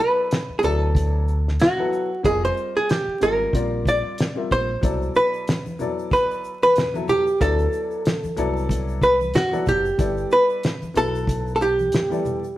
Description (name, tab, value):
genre	hip hop, jazz-hop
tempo	93 BPM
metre	4/4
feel	swing 58% on 16ths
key	unclear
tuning	A4 = 441 Hz
part	archtop guitar, miked and amplified	melody	0.0-12.6 s	F#4 to D5	-20 LUFS	right 1 dB	none
part	dark grand piano	accompaniment	0.0-12.4 s	B2 to E5	-28 LUFS	left 4 dB	none
part	cloth-damped thuddy drum kit	drums	0.3-12.4 s	hi-hat, kick drum, shaker, snare drum	-24 LUFS	equal	none
part	deep dub fingered electric bass	bass	0.5-11.9 s	F1 to D2	-25 LUFS	equal	none
part	egg shaker and congas	percussion	4.8-12.6 s	none	-34 LUFS	equal	none
room	moderate stone room reverb, RT60 0.9 s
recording	rough rehearsal-room recording, vinyl crackle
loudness	-19 LUFS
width	side -15 dB against mid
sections	0.0-12.6 A section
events	none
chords	0.0 Bm7; 2.2 Fm7; 3.5 A#add9; 4.8 Cmaj9 (rootless); 7.4 D13; 10.0 Gmaj7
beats	0.31 0.96 1.60 | 2.25 2.89 3.54 4.18 | 4.83 5.47 6.12 6.76 | 7.41 8.05 8.70 9.35 | 9.99 10.63 11.28 11.93 | 12.57